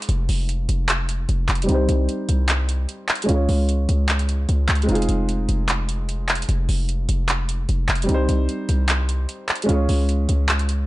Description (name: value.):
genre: hip hop, trap.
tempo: 150 BPM.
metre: 4/4.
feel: half-time.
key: F minor.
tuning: A4 = 440 Hz.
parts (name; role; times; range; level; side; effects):
dark grand piano; accompaniment; 0.0-10.9 s; G3 to Db5; -26 LUFS; right 1 dB; low-pass filter.
booming analog drum machine; drums; 0.0-10.8 s; handclaps, hi-hat; -24 LUFS; equal; none.
hard-hitting 808-style bass; bass; 0.1-10.9 s; F1 to Db2; -20 LUFS; equal; none.
room: digital ambience.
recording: dark, warm production, nothing above 10.3 kHz.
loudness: -18 LUFS.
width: side -18 dB against mid.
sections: 0.0-10.9 A section.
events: filter sweep on grand piano 0.0-4.9.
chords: 0.0 Fm7; 1.7 Cm; 3.3 Db; 4.9 Fm7; 8.1 Cm; 9.7 Db.